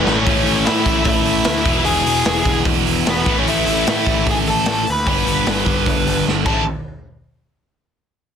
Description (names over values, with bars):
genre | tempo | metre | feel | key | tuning
punk rock | 150 BPM | 4/4 | straight | A major | A4 = 439 Hz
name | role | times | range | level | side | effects
bluesy overdriven lead guitar | melody | 0.0-6.6 s | B3 to B5 | -20 LUFS | equal | distortion
biting overdriven guitar | riff | 0.0-6.6 s | E2 to A3 | -22 LUFS | left 17 dB | none
distorted electric guitar | riff | 0.0-6.6 s | E2 to A3 | -21 LUFS | right 17 dB | overdrive
fuzz picked electric bass | bass | 0.0-6.6 s | E1 to A2 | -23 LUFS | equal | overdrive
raw garage drum kit | drums | 0.1-6.6 s | crash cymbal, hi-hat, kick drum, snare drum | -20 LUFS | equal | none
room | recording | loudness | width
little or no reverb | dense, heavily limited modern master | -14 LUFS | side -8 dB against mid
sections
0.3-6.7 A section; 6.7-8.3 B section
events
drum fill 0.0, 6.3-6.7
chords
0.3 A; 1.7 E; 3.3 A5; 5.1 G; 6.5 A5; 6.7 N.C.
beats
| 0.25 0.65 1.05 1.45 | 1.85 2.25 2.65 3.05 | 3.46 3.86 4.26 4.66 | 5.06 5.46 5.86 6.26